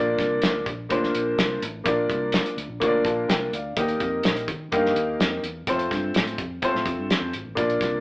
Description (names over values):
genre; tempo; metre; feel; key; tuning
uptempo 1960s-style soul; 126 BPM; 4/4; straight; Bb major; A4 = 440 Hz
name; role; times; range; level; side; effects
warm upright piano; accompaniment; 0.0-8.0 s; A3 to A5; -23 LUFS; equal; none
vintage muted fingered electric bass; bass; 0.0-8.0 s; Ab1 to Eb3; -33 LUFS; equal; none
cloth-damped thuddy drum kit; drums; 0.2-7.9 s; hi-hat, kick drum, snare drum; -25 LUFS; equal; none
room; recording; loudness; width
moderate large studio reverb, RT60 0.9 s; band playing live in one room, AM radio sound; -21 LUFS; side -24 dB against mid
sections
0.0-8.0 A section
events
none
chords
0.0 Bb; 3.8 Eb; 5.7 F